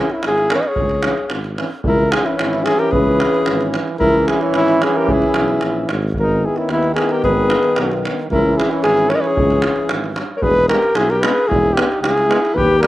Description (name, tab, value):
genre	balkan folk, Balkan brass band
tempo	112 BPM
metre	2/4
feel	straight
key	C# dorian sharp4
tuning	A4 = 441 Hz
part	mellow flugelhorn	melody	0.0-12.9 s	E4 to D#5	-17 LUFS	equal	none
part	mellow alto saxophone	second line	0.0-12.9 s	B3 to B4	-22 LUFS	left 3 dB	slapback echo
part	brilliant trombone	accompaniment	0.0-12.9 s	D#3 to G#3	-24 LUFS	right 6 dB	slapback echo
part	mellow euphonium	accompaniment	0.0-12.9 s	A#3 to C#4	-24 LUFS	left 4 dB	slapback echo
part	davul	percussion	0.1-12.9 s	none	-22 LUFS	right 1 dB	slapback echo
part	mellow tuba	bass	0.3-12.8 s	E1 to D#2	-22 LUFS	equal	none
room	little or no reverb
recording	recorded outdoors, with no room sound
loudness	-14 LUFS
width	side -15 dB against mid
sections	0.0-1.9 A section; 1.9-10.4 A section; 10.4-12.9 B section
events	none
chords	0.0 C#m; 6.2 G#m; 8.3 C#m; 10.4 E